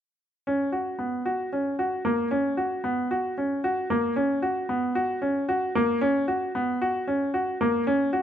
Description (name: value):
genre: contemporary instrumental, contemporary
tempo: 227 BPM (eighths)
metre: 7/8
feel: straight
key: unclear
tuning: A4 = 442 Hz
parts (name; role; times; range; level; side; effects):
- bright baby grand piano; arpeggios; 0.5-8.2 s; A#3 to F#4; -24 LUFS; equal; none
room: light reverb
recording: close, detailed microphones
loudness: -24 LUFS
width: side -9 dB against mid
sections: 0.5-7.9 A section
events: none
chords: none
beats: | 0.46 0.72 0.99 1.26 1.52 1.79 2.05 | 2.32 2.58 2.85 3.11 3.38 3.64 3.90 | 4.17 4.43 4.70 4.96 5.23 5.49 5.76 | 6.02 6.29 6.55 6.82 7.08 7.34 7.61 | 7.87 8.14